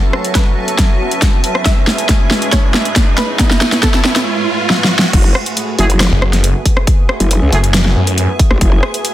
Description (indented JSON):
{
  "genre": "heavy wobble dubstep",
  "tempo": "138 BPM",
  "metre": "4/4",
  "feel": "half-time",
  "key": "F# minor",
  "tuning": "A4 = 440 Hz",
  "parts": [
    { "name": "wide unison pluck", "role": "melody", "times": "0.0-5.0 s", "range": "A4 to E5", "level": "-24 LUFS", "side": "right 1 dB", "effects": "tape echo" },
    { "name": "supersaw pad", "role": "sustained chords", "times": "0.0-9.1 s", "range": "F#3 to C#5", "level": "-24 LUFS", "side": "equal", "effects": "sidechain pumping, low-pass filter" },
    { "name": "riser", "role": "sound effects", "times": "0.2-5.1 s", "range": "none", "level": "-22 LUFS", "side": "right 2 dB", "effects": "none" },
    { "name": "granular cloud pad", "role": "texture", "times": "0.0-9.1 s", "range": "G#3 to A5", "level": "-22 LUFS", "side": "right 2 dB", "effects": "built-in reverb, sidechain pumping" },
    { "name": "big-room dance drum kit", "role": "drums", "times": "0.1-9.1 s", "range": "crash cymbal, hi-hat, rim click, snare drum", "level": "-15 LUFS", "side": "equal", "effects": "overdrive, studio reverb" },
    { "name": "electronic kick drum", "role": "drums", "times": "0.3-8.7 s", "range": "none", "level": "-12 LUFS", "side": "equal", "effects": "overdrive, studio reverb" },
    { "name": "growl bass", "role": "bass", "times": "5.1-8.8 s", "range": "F#1 to C#2", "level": "-13 LUFS", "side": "equal", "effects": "chorus, overdrive" },
    { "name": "mellow brass ensemble", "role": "stabs", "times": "5.8-7.6 s", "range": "A3 to G#4", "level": "-21 LUFS", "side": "right 2 dB", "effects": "tape echo" },
    { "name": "snarling distorted saw bass", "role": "bass", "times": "6.1-8.3 s", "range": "F#1 to F#2", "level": "-12 LUFS", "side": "equal", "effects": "distortion, overdrive" }
  ],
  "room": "light reverb",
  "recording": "dense, heavily limited modern master",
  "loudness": "-10 LUFS",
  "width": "side -14 dB against mid",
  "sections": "0.0-5.1 A section; 5.1-9.1 B section",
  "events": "build-up 0.0-5.1; drum fill 0.0-4.3, 4.7-5.1; filter sweep on supersaw synth 0.0-5.1; riser 0.2-5.1; drop 5.1-9.1",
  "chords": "0.0 F#m; 1.7 C#m/G#; 3.4 A; 5.1 F#madd9",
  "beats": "0.35 0.79 1.22 | 1.66 2.09 2.52 2.96 | 3.39 3.83 4.26 4.70 | 5.13 5.57 6.00 6.44 | 6.87 7.31 7.74 8.18 | 8.61 9.05"
}